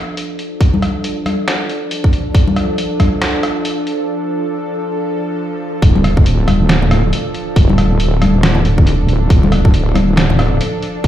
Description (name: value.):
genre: deep dubstep.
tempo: 138 BPM.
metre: 4/4.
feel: swing 60% on 16ths, half-time.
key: D minor.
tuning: A4 = 440 Hz.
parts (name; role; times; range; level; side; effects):
bowed-like drone; sustained chords; 0.0-11.1 s; F3 to A4; -20 LUFS; right 1 dB; built-in reverb.
trip hop sampler-style drum kit; drums; 0.2-11.1 s; hi-hat, rim click, snare drum; -19 LUFS; equal; high-pass filter on snare, high-pass filter on hats.
electronic kick drum; drums; 0.6-3.1, 5.8-11.1 s; none; -12 LUFS; equal; none.
congas; percussion; 0.7-3.1, 6.0-10.4 s; none; -18 LUFS; left 2 dB; dub echo.
wobble bass; bass; 5.8-11.1 s; D1; -13 LUFS; equal; chorus.
room: light reverb.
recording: played on a big sound system in a bare room, large studio reverb.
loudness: -12 LUFS.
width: side -12 dB against mid.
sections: 0.0-5.8 A section; 5.8-11.1 B section.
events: build-up 0.0-5.8; filter sweep on synth drone 0.0-5.8; break 4.1-5.8; drop 5.8-11.1.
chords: 0.0 Dm.